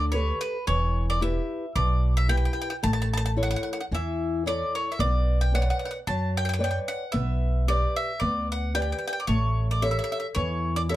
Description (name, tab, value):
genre	italian folk, Italian serenade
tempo	112 BPM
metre	4/4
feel	straight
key	unclear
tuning	A4 = 442 Hz
part	bowl-back mandolin	melody	0.0-10.9 s	B4 to A5	-29 LUFS	equal	none
part	nylon-string guitar	accompaniment	0.0-11.0 s	B2 to D5	-30 LUFS	left 2 dB	none
part	upright bass	bass	0.0-11.0 s	E1 to F#2	-25 LUFS	right 1 dB	none
room	light reverb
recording	none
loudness	-24 LUFS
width	side -14 dB against mid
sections	0.0-11.0 A section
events	none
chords	0.0 Gadd9; 0.7 Em; 2.8 A; 5.0 Bmadd9; 7.1 G/B; 9.3 A7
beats	0.14 | 0.67 1.21 1.75 2.28 | 2.82 3.36 3.90 4.45 | 4.99 5.53 6.07 6.61 | 7.14 7.68 8.22 8.75 | 9.29 9.82 10.36 10.89